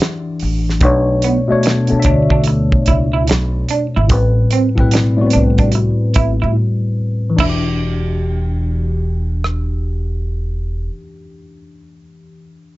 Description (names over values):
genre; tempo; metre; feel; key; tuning
R&B, neo-soul; 73 BPM; 4/4; swing 63% on 16ths; E minor; A4 = 440 Hz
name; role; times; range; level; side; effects
tine electric piano; accompaniment; 0.0-12.8 s; A2 to F#5; -17 LUFS; left 2 dB; phaser
damped 70s drum kit; drums; 0.0-9.7 s; crash cymbal, hi-hat, kick drum, rim click, snare drum; -17 LUFS; right 1 dB; none
upright bass; bass; 0.4-10.9 s; E1 to A2; -18 LUFS; equal; none
electric guitar through a small old amp; second line; 1.2-7.6 s; B3 to E4; -20 LUFS; right 6 dB; tremolo
room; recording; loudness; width
light reverb; nothing above 7.8 kHz; -13 LUFS; side -18 dB against mid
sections
0.0-7.4 A section; 7.4-10.7 B section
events
break 6.6-7.4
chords
0.0 Em9; 0.8 Bm9; 4.1 Am9; 7.4 Em9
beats
| 0.81 1.64 2.46 3.28 | 4.10 4.92 5.74 6.57 | 7.39 8.21 9.03 9.85